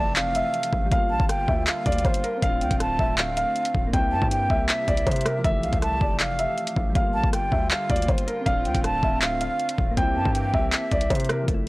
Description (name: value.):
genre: hip hop, trap.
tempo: 159 BPM.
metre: 4/4.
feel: half-time.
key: G dorian.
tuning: A4 = 440 Hz.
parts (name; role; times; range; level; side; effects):
felt-muted upright piano; melody; 0.0-11.5 s; Bb4 to G5; -28 LUFS; equal; low-pass filter.
breathy hollow jazz flute; second line; 0.0-11.4 s; E5 to A5; -28 LUFS; right 1 dB; tape echo.
soft electric-piano-like synth keys; accompaniment; 0.0-11.7 s; E3 to F4; -33 LUFS; left 1 dB; chorus, low-pass filter.
hollow soft pad; sustained chords; 0.0-11.5 s; C3 to G4; -36 LUFS; equal; chorus.
distorted 808-style bass; bass; 0.0-11.7 s; D1 to C3; -29 LUFS; equal; distortion.
trap drum kit; drums; 0.2-11.6 s; handclaps, hi-hat, kick drum, rim click; -24 LUFS; equal; overdrive.
room: little or no reverb.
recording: dry, gritty hardware recording, cassette tape.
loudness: -21 LUFS.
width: side -21 dB against mid.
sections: 0.0-11.5 A section.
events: none.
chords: 0.0 Fmaj7; 0.9 Gm7; 2.4 Dm7; 3.9 C7; 5.4 Fmaj7; 7.0 Gm7; 8.5 Dm7; 10.0 C7.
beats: 0.16 0.54 | 0.92 1.29 1.67 2.05 | 2.42 2.80 3.18 3.56 | 3.93 4.31 4.69 5.07 | 5.44 5.82 6.20 6.58 | 6.95 7.33 7.71 8.09 | 8.46 8.84 9.22 9.60 | 9.97 10.35 10.73 11.10 | 11.48.